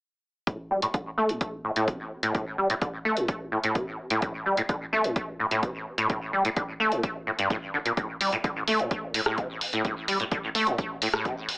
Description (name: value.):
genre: acid house.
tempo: 128 BPM.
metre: 4/4.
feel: straight.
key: A minor.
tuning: A4 = 441 Hz.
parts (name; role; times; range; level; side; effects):
acid bass, saw; riff; 0.5-11.3 s; A1 to A3; -26 LUFS; equal; ensemble chorus, sidechain pumping, digital delay.
electronic kick drum; drums; 0.5-11.3 s; none; -32 LUFS; equal; none.
punchy analog drum machine; drums; 0.5-11.6 s; hi-hat, rim click; -30 LUFS; equal; none.
room: wet studio reverb, RT60 0.5 s.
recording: heavily compressed radio sound, multiband compression, AM radio sound.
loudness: -25 LUFS.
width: side -26 dB against mid.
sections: 0.5-11.6 A section.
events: filter sweep on acid bass 0.5-11.6.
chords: none.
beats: | 0.47 0.94 1.41 1.88 | 2.35 2.82 3.29 3.75 | 4.22 4.69 5.16 5.63 | 6.10 6.57 7.04 7.50 | 7.97 8.44 8.91 9.38 | 9.85 10.32 10.79 11.25.